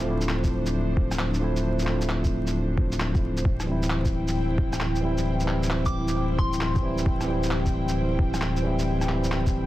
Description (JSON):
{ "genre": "future garage", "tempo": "133 BPM", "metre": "4/4", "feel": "swing 66% on 16ths", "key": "unclear", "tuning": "A4 = 440 Hz", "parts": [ { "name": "tine electric piano", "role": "accompaniment", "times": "0.0-9.7 s", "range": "E3 to E4", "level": "-29 LUFS", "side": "equal", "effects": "vintage 12-bit sampler grit, sidechain pumping, analog delay" }, { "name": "airy breathy pad", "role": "sustained chords", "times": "0.0-9.7 s", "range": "D4 to G5", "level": "-32 LUFS", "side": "left 1 dB", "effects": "chorus, vintage 12-bit sampler grit, sidechain pumping" }, { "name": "warm sub bass", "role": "bass", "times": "0.0-9.7 s", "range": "D1", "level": "-27 LUFS", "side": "equal", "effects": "sidechain pumping" }, { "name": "electronic shaker, handclaps and rim click", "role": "drums", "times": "0.2-9.5 s", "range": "none", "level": "-33 LUFS", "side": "equal", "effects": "small room reverb" }, { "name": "electronic kick drum", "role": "drums", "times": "0.4-9.5 s", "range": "none", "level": "-25 LUFS", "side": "equal", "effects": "small room reverb" }, { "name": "soft synth bell", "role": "melody", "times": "5.9-6.8 s", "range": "C6 to D6", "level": "-35 LUFS", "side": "left 1 dB", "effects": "chorus, analog delay" } ], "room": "little or no reverb", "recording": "dense, heavily limited modern master, vinyl crackle", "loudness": "-23 LUFS", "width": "side -15 dB against mid", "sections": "0.0-9.7 A section", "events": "none", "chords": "0.0 Dm7; 3.4 C/D" }